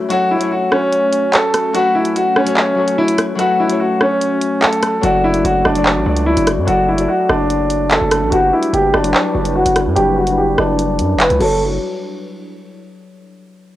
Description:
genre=hip hop, drill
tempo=146 BPM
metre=4/4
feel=half-time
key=F# phrygian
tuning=A4 = 441 Hz
part: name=Celtic harp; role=accompaniment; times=0.0-11.6 s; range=F#3 to E5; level=-22 LUFS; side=left 5 dB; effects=low-pass filter, cassette tape
part: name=warbly tape-like pad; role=sustained chords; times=0.0-11.6 s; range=G3 to B4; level=-24 LUFS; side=right 2 dB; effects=chorus, built-in reverb, low-pass filter, cassette tape
part: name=bright concert grand piano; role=melody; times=0.1-11.6 s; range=C#4 to B4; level=-15 LUFS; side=equal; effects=low-pass filter, cassette tape
part: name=drill drum kit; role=drums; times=0.1-11.5 s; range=crash cymbal, handclaps, hi-hat, rim click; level=-18 LUFS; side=equal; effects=cassette tape
part: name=distorted 808-style bass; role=bass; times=5.0-11.8 s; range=F#1 to F#2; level=-20 LUFS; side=right 1 dB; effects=distortion
room=moderate spring reverb, RT60 2.4 s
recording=home recording on cassette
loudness=-12 LUFS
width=side -14 dB against mid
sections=0.0-11.6 A section; 11.6-13.3 B section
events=break 0.0-5.0; filter sweep 0.0-11.6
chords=0.0 F#m; 5.0 D/F#; 8.3 Em7/F#; 11.4 F#m; 11.6 N.C.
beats=| 0.10 0.51 0.92 1.33 | 1.75 2.16 2.57 2.98 | 3.39 3.80 4.21 4.62 | 5.03 5.45 5.86 6.27 | 6.68 7.09 7.50 7.91 | 8.32 8.73 9.14 9.55 | 9.96 10.38 10.79 11.20 | 11.61

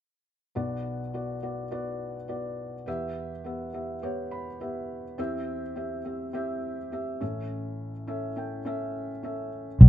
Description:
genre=pop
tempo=104 BPM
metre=4/4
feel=straight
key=B minor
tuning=A4 = 440 Hz
part: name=felt-muted upright piano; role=accompaniment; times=0.6-9.9 s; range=A1 to B5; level=-32 LUFS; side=equal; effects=none
part: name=vintage muted fingered electric bass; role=bass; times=9.8-9.9 s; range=B1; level=-6 LUFS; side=equal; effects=none
room=little or no reverb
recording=nothing above 10.9 kHz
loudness=-33 LUFS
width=side -16 dB against mid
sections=0.6-9.8 A section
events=felt piano fill 4.0-5.2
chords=0.6 Bm; 2.9 Em; 5.2 C/E; 7.2 A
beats=| 0.56 1.14 1.72 2.29 | 2.87 3.45 4.03 4.61 | 5.18 5.76 6.34 6.92 | 7.50 8.07 8.65 9.23 | 9.81

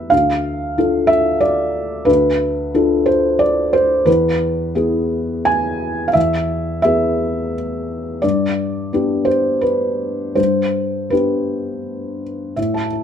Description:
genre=neoclassical minimalist piano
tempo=79-92 BPM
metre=3/4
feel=rubato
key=unclear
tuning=A4 = 439 Hz
part: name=felt-muted upright piano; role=solo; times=0.0-13.0 s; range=D2 to A5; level=-15 LUFS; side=equal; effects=none
room=light reverb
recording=minimal, uncompressed stereo recording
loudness=-15 LUFS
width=side -8 dB against mid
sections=0.0-12.6 A section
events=none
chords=0.1 Dm; 4.1 E; 8.2 G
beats=| 0.12 0.77 1.42 | 2.08 2.75 3.41 | 4.07 4.75 5.46 | 6.15 6.84 7.53 | 8.23 8.93 9.64 | 10.38 11.12 11.85 | 12.57

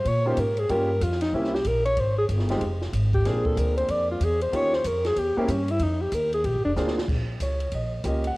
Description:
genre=jazz, small-group swing and bop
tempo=188 BPM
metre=4/4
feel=swing 63% on 8ths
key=Eb mixolydian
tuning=A4 = 440 Hz
part: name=mellow alto saxophone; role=melody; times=0.0-6.7 s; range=Bb3 to D5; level=-25 LUFS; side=equal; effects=cassette tape
part: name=upright bass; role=bass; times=0.0-8.4 s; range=F1 to Bb2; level=-26 LUFS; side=equal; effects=none
part: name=compact cocktail drum kit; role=drums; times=0.1-8.3 s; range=crash cymbal, hi-hat, kick drum, ride cymbal, snare drum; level=-34 LUFS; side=equal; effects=cassette tape
part: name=warm concert grand piano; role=accompaniment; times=0.3-8.4 s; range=G3 to Gb5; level=-30 LUFS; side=right 1 dB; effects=none
room=light reverb, studio ambience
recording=home recording on cassette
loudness=-22 LUFS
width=side -22 dB against mid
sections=0.0-7.1 A section; 7.1-8.4 A section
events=alto saxophone solo 0.0-7.1; drum fill 6.8-7.1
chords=0.0 Eb7; 0.7 Gm7b5; 1.3 C7b9; 2.0 Fm; 3.3 Bb7; 4.5 Eb7; 5.2 C7b9; 5.8 Ebadd9; 6.4 Bb7; 7.1 Eb7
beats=0.06 0.38 | 0.70 1.02 1.34 1.66 | 1.98 2.29 2.61 2.93 | 3.25 3.57 3.89 4.21 | 4.53 4.85 5.17 5.49 | 5.80 6.12 6.44 6.76 | 7.08 7.40 7.72 8.04 | 8.36

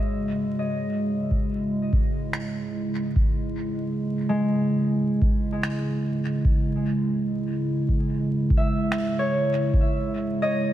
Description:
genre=ambient dub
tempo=73 BPM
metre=4/4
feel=straight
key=C# minor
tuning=A4 = 440 Hz
part: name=warbly tape-like pad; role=sustained chords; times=0.0-10.7 s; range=C#3 to F#4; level=-25 LUFS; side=right 1 dB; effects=chorus, built-in reverb
part: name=concert harp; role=arpeggios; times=0.0-10.7 s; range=G#3 to E5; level=-30 LUFS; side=equal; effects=tape echo
part: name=electronic kick drum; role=drums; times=1.3-9.9 s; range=none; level=-23 LUFS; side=equal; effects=none
part: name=finger snaps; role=drums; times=2.3-9.1 s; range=none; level=-35 LUFS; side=equal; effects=dub echo
room=light reverb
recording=vinyl crackle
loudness=-22 LUFS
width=side -12 dB against mid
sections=0.0-10.7 A section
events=none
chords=0.0 C#madd9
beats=0.70 1.52 2.34 | 3.16 3.98 4.81 5.63 | 6.45 7.27 8.09 8.92 | 9.74 10.56

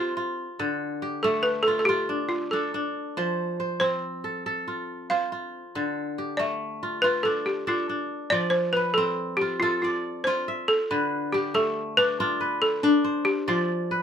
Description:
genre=west african traditional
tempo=93 BPM (dotted quarters)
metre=12/8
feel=straight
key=F lydian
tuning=A4 = 440 Hz
part: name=balafon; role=melody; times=0.0-14.0 s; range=F4 to F5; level=-24 LUFS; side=equal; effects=none
part: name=kora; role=arpeggios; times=0.0-14.0 s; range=D3 to E5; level=-27 LUFS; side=left 1 dB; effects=none
room=moderate studio reverb, RT60 0.5 s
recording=minimal, uncompressed stereo recording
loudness=-23 LUFS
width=side -8 dB against mid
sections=0.0-8.3 A section; 8.3-14.0 B section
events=balafon solo 8.3-14.0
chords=0.0 F; 0.6 Dm; 3.2 F; 5.7 Dm; 8.3 F; 10.9 Dm; 13.5 F5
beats=| 0.58 1.23 1.87 2.52 | 3.16 3.81 4.45 5.10 | 5.74 6.39 7.03 7.67 | 8.32 8.96 9.61 10.25 | 10.90 11.54 12.19 12.83 | 13.48

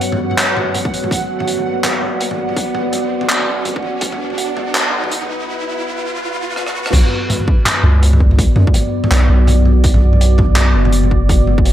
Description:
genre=half-time drum and bass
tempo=165 BPM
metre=4/4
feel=swing 57% on 16ths, half-time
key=B minor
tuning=A4 = 441 Hz
part: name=deep dark ambient pad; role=sustained chords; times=0.0-11.7 s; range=B3 to D5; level=-20 LUFS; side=equal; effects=chorus, built-in reverb, sidechain pumping
part: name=crunchy breakbeat drum kit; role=drums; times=0.0-11.7 s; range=crash cymbal, handclaps, hi-hat, rim click, toms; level=-18 LUFS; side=equal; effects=none
part: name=riser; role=sound effects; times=0.0-6.9 s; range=none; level=-26 LUFS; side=right 1 dB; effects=none
part: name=pulsing gated texture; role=texture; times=0.0-5.5 s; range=F#5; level=-26 LUFS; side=right 4 dB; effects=chorus, built-in reverb
part: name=electronic kick drum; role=drums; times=0.9-4.1, 6.9-11.6 s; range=none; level=-15 LUFS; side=equal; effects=none
part: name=long sustained 808-style bass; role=bass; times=6.9-11.7 s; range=F#1 to F#2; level=-11 LUFS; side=equal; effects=none
room=moderate plate reverb, RT60 1.5 s, small room reverb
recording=dreamy mix soaked in reverb, high-pass filter, faint mains hum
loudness=-13 LUFS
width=side -12 dB against mid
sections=0.0-6.9 A section; 6.9-11.7 B section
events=build-up 0.0-6.9; riser 0.0-6.9; break 5.5-6.9; drum fill 6.6-6.9; drop 6.9-11.7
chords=0.0 Bm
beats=0.02 0.38 0.75 | 1.11 1.48 1.84 2.20 | 2.57 2.93 3.29 3.66 | 4.02 4.38 4.75 5.11 | 5.47 5.84 6.20 6.57 | 6.93 7.29 7.66 8.02 | 8.38 8.75 9.11 9.47 | 9.84 10.20 10.57 10.93 | 11.29 11.66

